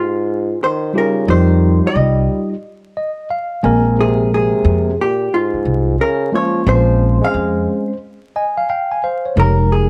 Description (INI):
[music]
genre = hip hop, jazz-hop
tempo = 89 BPM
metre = 4/4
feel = swing 65% on 16ths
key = unclear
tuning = A4 = 437 Hz
[part]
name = vintage hollow-body jazz guitar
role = melody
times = 0.0-9.9 s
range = F4 to F5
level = -21 LUFS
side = equal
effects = plate reverb
[part]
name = breathy trombone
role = second line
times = 0.0-7.9 s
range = Ab2 to Ab3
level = -24 LUFS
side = equal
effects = plate reverb
[part]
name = tine electric piano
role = accompaniment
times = 0.9-9.9 s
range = G3 to Ab5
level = -20 LUFS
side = equal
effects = plate reverb
[part]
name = upright bass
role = bass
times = 1.3-9.9 s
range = F1 to F2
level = -17 LUFS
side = equal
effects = none
[sound]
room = moderate small room reverb, RT60 0.5 s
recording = dark, warm production, vinyl crackle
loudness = -16 LUFS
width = mono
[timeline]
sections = 0.0-9.4 A section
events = tine electric piano fill 2.6-4.0, 8.0-9.4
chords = 0.0 F7sus2; 3.6 Bbm9; 9.4 Fm11